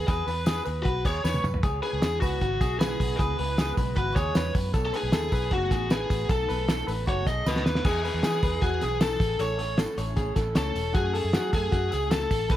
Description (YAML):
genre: jangly indie pop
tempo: 155 BPM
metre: 4/4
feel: straight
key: E major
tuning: A4 = 441 Hz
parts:
  - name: biting lead guitar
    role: melody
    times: 0.0-12.6 s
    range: F#4 to D#5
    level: -31 LUFS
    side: left 2 dB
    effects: overdrive, dub echo
  - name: vibraphone with hard mallets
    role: second line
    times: 0.0-12.6 s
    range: F#5 to D#6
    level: -38 LUFS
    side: right 4 dB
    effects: dub echo
  - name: electric guitar through a small old amp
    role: arpeggios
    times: 0.0-12.6 s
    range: F#4 to C#5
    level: -31 LUFS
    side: left 1 dB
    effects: dub echo
  - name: vintage muted fingered electric bass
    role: bass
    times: 0.0-12.6 s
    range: E1 to F#3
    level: -30 LUFS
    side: equal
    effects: none
  - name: cloth-damped thuddy drum kit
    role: drums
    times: 0.1-12.6 s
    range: crash cymbal, hi-hat, kick drum, snare drum, toms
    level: -27 LUFS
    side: equal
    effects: none
  - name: tambourine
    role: percussion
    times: 0.1-12.6 s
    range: none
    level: -48 LUFS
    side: right 9 dB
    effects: dub echo
  - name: hollow soft pad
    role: sustained chords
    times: 1.6-12.6 s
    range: C#3 to B4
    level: -39 LUFS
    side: equal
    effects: ensemble chorus
room: studio reverb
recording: echo-heavy mix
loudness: -24 LUFS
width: side -13 dB against mid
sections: 0.0-7.8 A section; 7.8-12.6 B section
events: drum fill 1.2-1.6, 7.5-7.8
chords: 0.0 Emaj7; 1.6 C#m7; 4.7 B7; 7.8 E; 9.2 A; 11.0 F#m